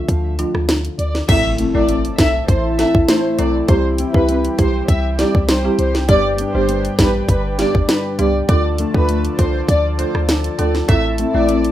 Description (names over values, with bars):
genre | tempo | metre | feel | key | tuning
dancehall | 100 BPM | 4/4 | straight | A minor | A4 = 443 Hz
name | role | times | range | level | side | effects
nylon-string guitar | arpeggios | 0.0-11.7 s | G2 to E4 | -22 LUFS | left 2 dB | none
clean 808-style bass | bass | 0.0-11.7 s | G1 to D2 | -20 LUFS | equal | none
island pop drum kit | drums | 0.1-11.7 s | crash cymbal, hi-hat, kick drum, rim click, snare drum | -17 LUFS | equal | none
folk marimba with medium mallets | accompaniment | 0.4-11.5 s | F3 to A4 | -22 LUFS | right 2 dB | none
dark studio violin section | melody | 1.0-11.6 s | B4 to E5 | -22 LUFS | left 1 dB | none
warm analog pad | sustained chords | 1.3-11.7 s | C4 to A5 | -29 LUFS | left 1 dB | chorus, sidechain pumping
impact | sound effects | 1.3-3.7 s | none | -30 LUFS | equal | none
room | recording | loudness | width
moderate studio reverb, RT60 0.6 s | rough home demo mix | -14 LUFS | side -12 dB against mid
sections
0.0-1.3 A section; 1.3-11.7 B section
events
impact 1.3-3.7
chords
0.0 Dm; 1.3 Am; 3.7 C; 6.1 G; 8.5 Dm; 10.9 Am